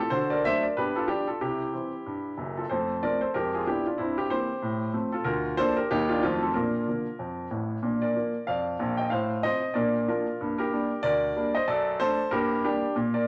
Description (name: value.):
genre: jazz, stride piano.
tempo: 187 BPM.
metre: 4/4.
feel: swing 59% on 8ths.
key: F major, Bb major from 5.3 s.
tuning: A4 = 441 Hz.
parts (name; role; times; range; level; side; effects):
warm baby grand piano; solo; 0.0-13.3 s; Gb1 to G5; -28 LUFS; equal; none.
room: wet club reverb, RT60 0.8 s.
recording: none.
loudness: -28 LUFS.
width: mono.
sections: 0.0-7.8 A section; 7.8-13.3 B section.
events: none.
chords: 0.1 D7; 0.8 G7; 1.4 C; 2.7 F; 3.3 Fdim7; 4.0 C7/G; 4.6 F/A; 5.3 Bb/D; 5.9 Eb; 6.2 F7b9; 6.5 Bb; 9.1 F/A; 9.8 Bb; 10.4 Gm; 11.7 D/F#; 12.3 Gm.